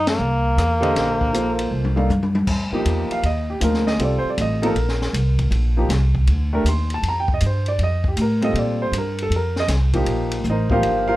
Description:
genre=modal jazz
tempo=158 BPM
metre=4/4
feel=swing 65% on 8ths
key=F mixolydian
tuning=A4 = 440 Hz
part: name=breathy tenor saxophone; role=melody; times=0.0-2.1 s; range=Bb3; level=-21 LUFS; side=equal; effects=none
part: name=upright bass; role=bass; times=0.0-11.2 s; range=G1 to Bb2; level=-20 LUFS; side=equal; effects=none
part: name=compact cocktail drum kit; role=drums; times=0.1-10.9 s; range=crash cymbal, hi-hat, kick drum, ride cymbal, rim click, snare drum, toms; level=-26 LUFS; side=left 1 dB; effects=none
part: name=warm baby grand piano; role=accompaniment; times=0.8-11.2 s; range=D3 to C6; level=-22 LUFS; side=right 1 dB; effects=none
room=light reverb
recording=dark, warm production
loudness=-18 LUFS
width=side -16 dB against mid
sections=0.0-2.5 A section; 2.5-11.2 B section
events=band accent 0.0; drum fill 1.7-2.5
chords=0.0 F7sus4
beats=0.19 0.57 | 0.95 1.33 1.71 2.09 | 2.47 2.85 3.23 3.62 | 4.00 4.38 4.76 5.14 | 5.52 5.90 6.28 6.66 | 7.04 7.42 7.79 8.17 | 8.55 8.93 9.31 9.69 | 10.07 10.45 10.83

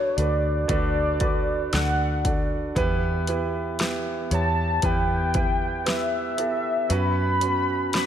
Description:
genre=pop ballad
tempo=58 BPM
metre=4/4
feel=straight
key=unclear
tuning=A4 = 444 Hz
part: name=warm velvety synth lead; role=melody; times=0.0-8.1 s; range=C#5 to B5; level=-26 LUFS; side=left 1 dB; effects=chorus
part: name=warm concert grand piano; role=accompaniment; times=0.0-8.1 s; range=D3 to D5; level=-27 LUFS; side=right 3 dB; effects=none
part: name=vintage muted fingered electric bass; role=bass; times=0.0-8.1 s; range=D2 to F#2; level=-27 LUFS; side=equal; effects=none
part: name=deep house drum kit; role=drums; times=0.2-8.1 s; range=hi-hat, kick drum, snare drum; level=-27 LUFS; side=equal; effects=none
room=light reverb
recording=none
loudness=-22 LUFS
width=side -9 dB against mid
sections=0.0-8.1 A section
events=none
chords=0.0 D6; 2.8 Em; 6.9 F#sus4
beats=0.70 1.73 | 2.77 3.80 4.84 5.87 | 6.91 7.94

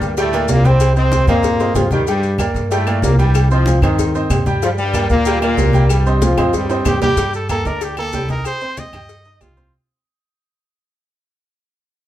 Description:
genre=latin, salsa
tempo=188 BPM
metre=4/4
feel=straight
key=G minor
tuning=A4 = 440 Hz
part: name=brilliant trombone section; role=melody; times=0.0-7.0 s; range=G2 to F4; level=-18 LUFS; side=left 2 dB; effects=none
part: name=bright baby grand piano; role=accompaniment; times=0.0-9.7 s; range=G3 to G6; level=-22 LUFS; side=right 3 dB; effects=none
part: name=upright bass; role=bass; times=0.0-9.7 s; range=C2 to G2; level=-17 LUFS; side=equal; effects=none
part: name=cowbell and bongos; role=percussion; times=0.0-9.6 s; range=none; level=-26 LUFS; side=left 6 dB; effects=none
part: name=maracas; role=percussion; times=0.0-9.7 s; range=none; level=-34 LUFS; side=left 5 dB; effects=none
part: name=agogo bells and timbales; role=percussion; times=0.2-9.6 s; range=none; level=-25 LUFS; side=right 4 dB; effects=none
part: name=congas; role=percussion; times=0.2-9.7 s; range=none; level=-22 LUFS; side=left 1 dB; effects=none
part: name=claves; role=percussion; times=2.4-9.6 s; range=none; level=-32 LUFS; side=left 7 dB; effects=none
part: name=clear trumpet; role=melody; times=6.9-9.7 s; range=F4 to Eb5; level=-23 LUFS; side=equal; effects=none
room=wet studio reverb, RT60 0.6 s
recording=heard from further back in the room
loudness=-13 LUFS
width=side -13 dB against mid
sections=0.0-7.2 A section; 7.2-9.7 B section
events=drum fill 1.6-2.1, 6.2-7.2; fade-out 7.2-9.7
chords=0.0 Gmadd9; 0.8 Cm; 2.1 Gmadd9; 3.4 Cm; 4.6 Gm; 5.9 Cm; 7.2 Gmadd9; 8.4 Cm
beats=0.17 0.49 | 0.81 1.12 1.44 1.76 | 2.08 2.40 2.71 3.03 | 3.35 3.67 3.99 4.31 | 4.62 4.94 5.26 5.58 | 5.90 6.22 6.54 6.86 | 7.17 7.49 7.81 8.13 | 8.45 8.77 9.09 9.41

